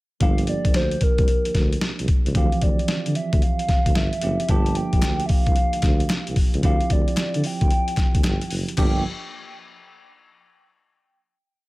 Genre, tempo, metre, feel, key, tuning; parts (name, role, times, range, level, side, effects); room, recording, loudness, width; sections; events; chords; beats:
R&B, new jack swing; 112 BPM; 4/4; swing 66% on 16ths; G dorian; A4 = 440 Hz
hollow clarinet-like synth lead; melody; 0.2-9.0 s; Bb4 to A5; -27 LUFS; equal; chorus
bell-like tine electric piano; accompaniment; 0.2-9.0 s; E3 to G4; -28 LUFS; right 4 dB
warm tuba; bass; 0.2-9.0 s; F#1 to D3; -26 LUFS; equal
boom bap sampler-style drum kit; drums; 0.2-8.9 s; crash cymbal, hi-hat, kick drum, snare drum; -21 LUFS; equal
group handclap; percussion; 5.0-9.0 s; -38 LUFS; left 4 dB
little or no reverb; -18 LUFS; side -20 dB against mid
0.2-8.8 verse; 8.8-10.9 final chord
0.2 Gm7; 2.4 Dm11; 4.5 Gm7; 6.6 Dm11; 8.8 Gm7
| 0.21 0.74 1.28 1.81 | 2.35 2.88 3.42 3.96 | 4.49 5.03 5.56 6.10 | 6.63 7.17 7.71 8.24 | 8.78